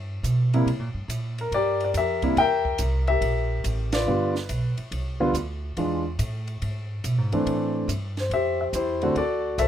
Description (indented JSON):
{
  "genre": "jazz piano trio",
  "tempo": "141 BPM",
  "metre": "4/4",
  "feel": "swing 67% on 8ths",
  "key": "unclear",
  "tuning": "A4 = 439 Hz",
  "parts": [
    { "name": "upright bass", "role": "bass", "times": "0.0-9.7 s", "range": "G1 to C3", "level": "-27 LUFS", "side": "right 1 dB", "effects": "none" },
    { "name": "compact cocktail drum kit", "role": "drums", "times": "0.2-9.7 s", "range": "hi-hat, kick drum, ride cymbal, snare drum", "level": "-36 LUFS", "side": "right 1 dB", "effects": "none" },
    { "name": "warm grand piano", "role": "melody", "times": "0.5-9.7 s", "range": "C3 to G5", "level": "-23 LUFS", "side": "left 1 dB", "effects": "none" }
  ],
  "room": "little or no reverb",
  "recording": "minimal, uncompressed stereo recording",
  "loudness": "-23 LUFS",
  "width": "side -10 dB against mid",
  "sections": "0.0-9.7 A section",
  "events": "band accent 3.9",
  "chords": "0.0 G; 0.7 C7; 4.1 G7; 5.8 E7; 7.5 Am7; 9.2 D7"
}